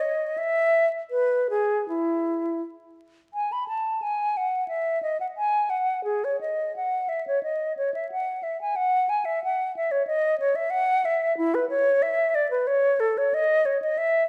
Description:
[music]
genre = classical, baroque-style fantasia for unaccompanied flute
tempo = 79-95 BPM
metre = 4/4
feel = rubato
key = E major, C# minor from 3.4 s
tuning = A4 = 440 Hz
[part]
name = mellow silver concert flute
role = solo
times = 0.0-14.2 s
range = E4 to B5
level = -25 LUFS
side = equal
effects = none
[sound]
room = wet recital hall reverb, RT60 1.6 s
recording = vinyl crackle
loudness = -25 LUFS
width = mono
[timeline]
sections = 0.0-3.4 A section; 3.4-14.3 A section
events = none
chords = none

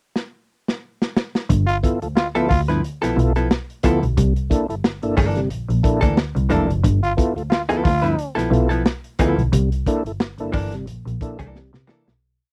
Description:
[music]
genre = funk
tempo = 90 BPM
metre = 4/4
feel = swing 56% on 16ths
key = G mixolydian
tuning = A4 = 440 Hz
[part]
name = crunchy breakbeat drum kit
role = drums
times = 0.2-12.2 s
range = hi-hat, kick drum, snare drum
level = -22 LUFS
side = equal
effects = none
[part]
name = mellow tonewheel organ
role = stabs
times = 1.5-12.1 s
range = G2 to A4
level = -23 LUFS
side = equal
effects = chorus vibrato, slow rotary speaker
[part]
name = clear double bass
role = bass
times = 1.5-12.2 s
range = F1 to C3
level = -24 LUFS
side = equal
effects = none
[part]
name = growling trombone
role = second line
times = 1.7-2.6, 7.0-8.3 s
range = F4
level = -24 LUFS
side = equal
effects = none
[part]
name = vintage hollow-body jazz guitar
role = accompaniment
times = 2.4-12.1 s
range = E3 to B4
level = -25 LUFS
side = equal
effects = none
[sound]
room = little or no reverb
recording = dry, close 1970s-style studio recording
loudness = -20 LUFS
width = mono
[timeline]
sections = 0.0-1.5 pickup bar; 1.5-12.2 groove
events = drum fill 0.2-1.5, 11.5-12.2; fade-out 9.5-12.2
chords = 0.0 N.C.; 1.5 G13; 4.2 C13; 6.8 G13; 9.5 C13

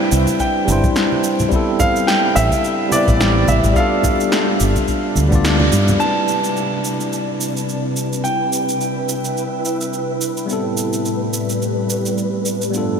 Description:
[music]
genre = sunset chillout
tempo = 107 BPM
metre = 4/4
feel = swing 56% on 16ths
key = C major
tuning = A4 = 440 Hz
[part]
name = warm concert grand piano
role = melody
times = 0.0-10.2 s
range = D5 to A5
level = -21 LUFS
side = right 1 dB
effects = diffuse ambient delay
[part]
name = bright tine electric piano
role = accompaniment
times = 0.0-13.0 s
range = G3 to D5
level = -20 LUFS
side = equal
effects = auto-pan, diffuse ambient delay
[part]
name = mellow fretless electric bass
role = bass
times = 0.1-6.0 s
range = G1 to G2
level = -16 LUFS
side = equal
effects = lush chorus
[part]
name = electronic cabasa and snare drum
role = drums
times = 0.1-12.9 s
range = none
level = -24 LUFS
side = right 1 dB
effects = overdrive
[part]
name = congas and bongos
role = percussion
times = 0.3-6.0 s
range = none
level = -26 LUFS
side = right 1 dB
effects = none
[part]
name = electronic kick drum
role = drums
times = 0.4-5.4 s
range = none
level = -20 LUFS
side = equal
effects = none
[part]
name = soft string machine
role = sustained chords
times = 6.0-13.0 s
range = G2 to E5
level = -22 LUFS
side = equal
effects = phaser, ensemble chorus
[sound]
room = wet huge ambient reverb, RT60 7.5 s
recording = dreamy mix soaked in reverb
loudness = -15 LUFS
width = side -6 dB against mid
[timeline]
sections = 0.0-6.0 A section; 6.0-13.0 B section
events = band accent 5.5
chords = 0.0 Cmaj9; 1.5 Am9; 3.8 G9; 6.0 Cmaj9; 10.5 Am9

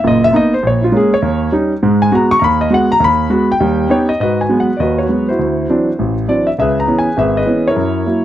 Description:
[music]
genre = jazz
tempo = 202 BPM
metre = 4/4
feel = swing 61% on 8ths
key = G# minor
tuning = A4 = 440 Hz
[part]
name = warm concert grand piano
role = solo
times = 0.0-8.2 s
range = F#1 to C#6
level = -11 LUFS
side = equal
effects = none
[sound]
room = light reverb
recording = dry, close 1970s-style studio recording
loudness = -11 LUFS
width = side -12 dB against mid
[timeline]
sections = 0.0-4.2 A section; 4.2-8.2 B section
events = grand piano solo 0.0-4.2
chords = 0.0 Bmaj7; 0.6 A#m7; 1.2 D#7; 1.8 G#m7; 3.6 D#7b13; 4.2 G#m7; 5.4 D9; 6.6 C#m7

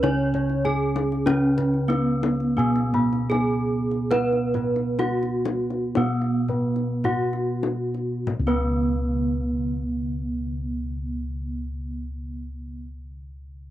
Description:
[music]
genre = Javanese gamelan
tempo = 46-98 BPM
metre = 4/4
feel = straight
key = unclear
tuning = A4 = 439 Hz
[part]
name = gamelan-type bronze metallophone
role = melody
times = 0.0-12.9 s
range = B3-25c to C#5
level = -26 LUFS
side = equal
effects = none
[part]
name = gamelan-type bronze metallophone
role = accompaniment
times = 0.0-12.9 s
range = C#3 to C#4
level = -29 LUFS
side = right 5 dB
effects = none
[part]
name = gamelan-type bossed gongs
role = arpeggios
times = 0.0-12.9 s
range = B4-25c to B5-25c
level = -32 LUFS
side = left 2 dB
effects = none
[part]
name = gamelan-type bossed gongs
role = bass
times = 0.0-12.8 s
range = C#2 to C#5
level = -27 LUFS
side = left 1 dB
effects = none
[part]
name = kendang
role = percussion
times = 0.0-8.9 s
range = none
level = -30 LUFS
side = left 6 dB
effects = none
[sound]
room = studio ambience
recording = dry, close 1970s-style studio recording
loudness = -22 LUFS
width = side -13 dB against mid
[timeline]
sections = 0.0-8.3 A section; 8.3-13.5 B section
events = slowing down 1.3-8.3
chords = none

